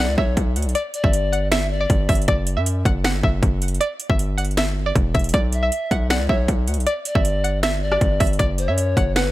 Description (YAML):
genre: hip hop, trap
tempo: 157 BPM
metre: 4/4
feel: half-time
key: B minor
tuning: A4 = 439 Hz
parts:
  - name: string-like resonator pluck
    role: melody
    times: 0.0-9.3 s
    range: D5 to F#5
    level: -25 LUFS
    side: right 1 dB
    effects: chorus, low-pass filter, digital delay
  - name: bright polished pan flute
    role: second line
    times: 0.0-2.2, 5.5-9.3 s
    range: B4 to E5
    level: -26 LUFS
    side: left 2 dB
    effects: digital delay
  - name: distorted 808-style bass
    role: bass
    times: 0.0-9.3 s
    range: E1 to F#2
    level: -21 LUFS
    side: equal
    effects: distortion
  - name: trap drum kit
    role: drums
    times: 0.2-9.2 s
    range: finger snaps, hi-hat, kick drum, rim click, snare drum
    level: -21 LUFS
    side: equal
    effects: overdrive
room: little or no reverb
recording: none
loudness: -18 LUFS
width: side -16 dB against mid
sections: 0.0-9.3 A section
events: none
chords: 0.0 Bm; 0.8 G5; 2.3 Esus2/F#; 3.8 Em; 5.3 Bm; 6.9 G5; 8.4 F#5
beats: 0.37 | 0.75 1.13 1.52 1.90 | 2.28 2.66 3.04 3.43 | 3.81 4.19 4.57 4.96 | 5.34 5.72 6.10 6.48 | 6.87 7.25 7.63 8.01 | 8.39 8.78 9.16